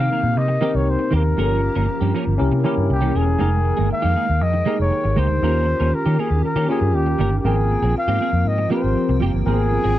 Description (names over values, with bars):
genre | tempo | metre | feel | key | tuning
pop | 119 BPM | 4/4 | straight | Ab major | A4 = 440 Hz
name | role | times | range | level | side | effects
breathy flugelhorn | melody | 0.0-10.0 s | G4 to F5 | -23 LUFS | left 1 dB | none
tine electric piano | accompaniment | 0.0-10.0 s | Cb4 to G5 | -24 LUFS | left 2 dB | lush chorus
hollow soft pad | sustained chords | 0.0-10.0 s | C3 to G5 | -30 LUFS | equal | ensemble chorus
clean electric guitar | riff | 0.0-10.0 s | Eb3 to Bb4 | -26 LUFS | right 5 dB | ensemble chorus
vintage muted fingered electric bass | bass | 0.0-9.9 s | E1 to Eb3 | -20 LUFS | equal | none
room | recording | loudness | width
little or no reverb | dry, close 1970s-style studio recording, faint mains hum | -17 LUFS | side -13 dB against mid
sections
0.0-10.0 A section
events
none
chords
0.0 Cm7; 1.4 Gm7b5; 2.4 C7b9; 3.4 Fm11; 5.4 Eb7; 7.5 Abmaj13